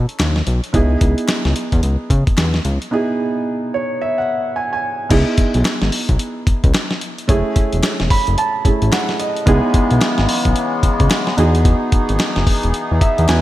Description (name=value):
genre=R&B, new jack swing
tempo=110 BPM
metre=4/4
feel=swing 62% on 16ths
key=unclear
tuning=A4 = 436 Hz
part: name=dark grand piano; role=accompaniment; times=0.0-13.4 s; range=A3 to B5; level=-20 LUFS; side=right 2 dB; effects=none
part: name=fat analog bass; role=bass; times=0.0-13.4 s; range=E1 to C#3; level=-16 LUFS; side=equal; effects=none
part: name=dusty soul sampler-style drum kit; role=drums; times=0.1-13.4 s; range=crash cymbal, hi-hat, kick drum, snare drum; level=-17 LUFS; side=equal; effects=gated reverb
part: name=group handclap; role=percussion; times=0.2-13.4 s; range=none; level=-33 LUFS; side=left 3 dB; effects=none
part: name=accordion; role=sustained chords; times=9.5-13.4 s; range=C#3 to G#4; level=-21 LUFS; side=left 1 dB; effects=light tremolo tuning
room=light reverb, small room ambience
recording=bright 1980s-style digital production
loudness=-14 LUFS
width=side -14 dB against mid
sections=0.0-5.1 A section; 5.1-13.4 B section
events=break 2.9-5.1; grand piano fill 3.5-5.1, 7.8-9.5, 12.7-13.4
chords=0.0 B9; 0.7 C#m9; 5.1 C#m7; 7.3 F#m7; 9.5 C#m7; 11.4 Emaj7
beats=0.20 | 0.74 1.29 1.83 2.38 | 2.92 3.47 4.01 4.56 | 5.11 5.65 6.20 6.74 | 7.29 7.83 8.38 8.92 | 9.47 10.01 10.56 11.11 | 11.65 12.20 12.74 13.29